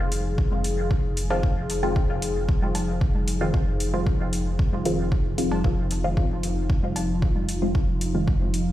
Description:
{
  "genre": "dub techno",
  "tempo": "114 BPM",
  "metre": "4/4",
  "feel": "straight",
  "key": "F minor",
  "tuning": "A4 = 443 Hz",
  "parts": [
    { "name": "dark analog pad", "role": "sustained chords", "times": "0.0-8.7 s", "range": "F3 to Ab4", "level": "-29 LUFS", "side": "left 1 dB", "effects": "chorus, sidechain pumping" },
    { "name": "warm sub bass", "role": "bass", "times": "0.0-8.7 s", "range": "F1", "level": "-29 LUFS", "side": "equal", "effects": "sidechain pumping" },
    { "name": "electronic hi-hat", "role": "drums", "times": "0.1-8.6 s", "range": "none", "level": "-34 LUFS", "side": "left 1 dB", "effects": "overdrive, small room ambience" },
    { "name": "electronic kick drum", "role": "drums", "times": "0.4-8.4 s", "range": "none", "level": "-24 LUFS", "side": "equal", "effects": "overdrive, small room ambience" },
    { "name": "congas and cowbell", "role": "percussion", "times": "0.5-8.2 s", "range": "none", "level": "-36 LUFS", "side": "right 1 dB", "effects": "sidechain pumping on perc, small room ambience, dub echo" },
    { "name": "filtered dub chord stab", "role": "stabs", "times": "1.3-8.3 s", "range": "Eb3 to F4", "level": "-30 LUFS", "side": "equal", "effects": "phaser, sidechain pumping, dub echo" }
  ],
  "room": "digital ambience",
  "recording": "played on a big sound system in a bare room, stone room reverb",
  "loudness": "-22 LUFS",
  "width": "side -14 dB against mid",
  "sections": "0.0-8.7 A section",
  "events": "filter sweep on synth stab 0.0-8.7",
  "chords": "0.0 Fm7",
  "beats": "0.38 0.91 | 1.43 1.96 2.49 3.01 | 3.54 4.07 4.59 5.12 | 5.64 6.17 6.70 7.22 | 7.75 8.28"
}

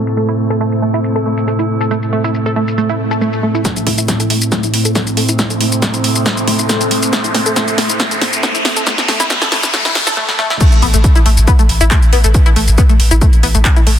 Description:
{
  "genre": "driving peak-time techno",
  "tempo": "138 BPM",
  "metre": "4/4",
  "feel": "straight",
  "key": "A minor",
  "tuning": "A4 = 440 Hz",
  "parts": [
    { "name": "tight sequenced synth", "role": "riff", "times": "0.0-13.9 s", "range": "A3 to A4", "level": "-19 LUFS", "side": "equal", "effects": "chorus, phaser, tube saturation, sidechain pumping, ping-pong delay" },
    { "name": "metallic inharmonic drone", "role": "drone", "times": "0.0-10.2 s", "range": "A2", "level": "-19 LUFS", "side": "right 1 dB", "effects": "chorus, built-in reverb, sidechain pumping" },
    { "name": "downlifter, swell and riser", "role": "sound effects", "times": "0.0-10.6 s", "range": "none", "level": "-21 LUFS", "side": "equal", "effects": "none" },
    { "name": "deep dark ambient pad", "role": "texture", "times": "0.0-10.2 s", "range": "C4 to C6", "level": "-21 LUFS", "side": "right 1 dB", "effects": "chorus, built-in reverb, sidechain pumping" },
    { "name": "techno drum kit", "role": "drums", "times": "0.1-14.0 s", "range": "crash cymbal, handclaps, hi-hat, shaker, snare drum", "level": "-17 LUFS", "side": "equal", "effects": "low-pass filter on snare, sidechain pumping on hats, low-pass filter on hats, sidechain pumping on perc, low-pass filter on perc, sidechain pumping on cymbals, low-pass filter on cymbals, low-pass filter on room" },
    { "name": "electronic kick drum", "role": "drums", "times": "3.6-13.7 s", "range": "none", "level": "-12 LUFS", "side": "equal", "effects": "high-pass filter on kick, high-pass filter on room" },
    { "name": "saturated sub bass", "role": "bass", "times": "10.8-14.0 s", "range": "A1", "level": "-12 LUFS", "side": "equal", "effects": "overdrive, sidechain pumping, low-pass filter" }
  ],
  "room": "light reverb, digital ambience",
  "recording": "dense, heavily limited modern master, high-pass filter, low-pass filter",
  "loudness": "-11 LUFS",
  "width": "side -10 dB against mid",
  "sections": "0.0-3.6 A section; 3.6-10.6 B section; 10.6-14.0 C section",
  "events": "filter sweep on synth arpeggio sound 0.0-3.6, 3.6-10.6; filter sweep 0.0-3.6, 3.6-10.6; swell 3.0-3.6, 9.7-10.6; build-up 3.6-10.6; drum fill 3.6-10.2, 10.2-10.6; riser 3.6-10.2; drop 10.6-14.0",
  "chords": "0.0 Am; 10.6 A5",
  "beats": "| 0.17 0.61 1.04 1.48 | 1.91 2.35 2.78 3.21 | 3.65 4.08 4.52 4.95 | 5.39 5.82 6.26 6.69 | 7.13 7.56 8.00 8.43 | 8.87 9.30 9.74 10.17 | 10.61 11.04 11.48 11.91 | 12.35 12.78 13.21 13.65"
}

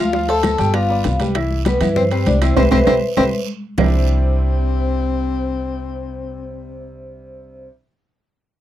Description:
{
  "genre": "Afro-Cuban jazz",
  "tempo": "198 BPM",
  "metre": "4/4",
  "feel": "straight",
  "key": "C major",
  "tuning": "A4 = 440 Hz",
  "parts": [
    { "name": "vibraphone with medium hard mallets", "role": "melody", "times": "0.0-7.7 s", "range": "B4 to A5", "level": "-22 LUFS", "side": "equal", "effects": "none" },
    { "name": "clear tenor saxophone", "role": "second line", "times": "0.0-7.0 s", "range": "B3 to A4", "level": "-24 LUFS", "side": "left 9 dB", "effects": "none" },
    { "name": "bright upright piano", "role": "accompaniment", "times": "0.0-7.7 s", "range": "C3 to G5", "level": "-25 LUFS", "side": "right 2 dB", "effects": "none" },
    { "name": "upright bass", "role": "bass", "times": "0.0-7.7 s", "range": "G1 to G2", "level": "-20 LUFS", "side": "equal", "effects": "none" },
    { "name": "bongos", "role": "percussion", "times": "0.1-3.9 s", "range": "none", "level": "-24 LUFS", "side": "left 6 dB", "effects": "none" },
    { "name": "congas", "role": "percussion", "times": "0.1-3.9 s", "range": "none", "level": "-24 LUFS", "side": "equal", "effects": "none" },
    { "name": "guiro", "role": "percussion", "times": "0.1-3.9 s", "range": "none", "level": "-36 LUFS", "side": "right 18 dB", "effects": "none" },
    { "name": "timbales", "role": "percussion", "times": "0.3-3.9 s", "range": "none", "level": "-23 LUFS", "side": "right 10 dB", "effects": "none" },
    { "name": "claves", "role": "percussion", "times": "0.4-3.9 s", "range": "none", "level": "-31 LUFS", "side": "right 18 dB", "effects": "none" }
  ],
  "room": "light reverb",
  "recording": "dry, close 1970s-style studio recording",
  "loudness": "-15 LUFS",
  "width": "side -12 dB against mid",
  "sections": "0.0-3.8 A section; 3.8-6.2 B section",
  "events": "band accent 2.6-3.8; drum fill 3.0-3.8",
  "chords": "0.1 Dm7; 0.7 G7; 1.4 Cmaj7; 3.8 Cadd9",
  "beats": "| 0.14 0.44 0.75 1.05 | 1.35 1.66 1.96 2.27 | 2.57 2.87 3.18 3.48 | 3.78 4.09 4.39 4.69 | 5.00 5.30 5.60 5.91"
}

